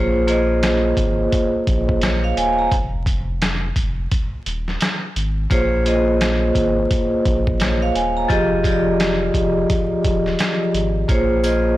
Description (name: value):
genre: hip hop, boom-bap hip-hop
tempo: 86 BPM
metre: 4/4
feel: swing 62% on 16ths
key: Bb dorian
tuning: A4 = 439 Hz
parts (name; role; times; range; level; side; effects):
- vibraphone with medium hard mallets; accompaniment; 0.0-11.8 s; F3 to Bb5; -18 LUFS; equal; cassette tape
- saturated sub bass; bass; 0.0-11.8 s; Eb1 to Bb1; -23 LUFS; equal; tube saturation
- trip hop sampler-style drum kit; drums; 0.3-11.6 s; hi-hat, kick drum, rim click, snare drum; -21 LUFS; equal; none
- tambourine; percussion; 11.4-11.6 s; none; -38 LUFS; left 4 dB; none
room: light reverb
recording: blown-out, overdriven recording, vinyl crackle, overdrive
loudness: -16 LUFS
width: side -15 dB against mid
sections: 0.0-11.8 A section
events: break 2.7-5.5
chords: 0.0 Bbm7; 2.7 N.C.; 5.5 Bbm7; 8.3 Fm7; 11.1 Bbm7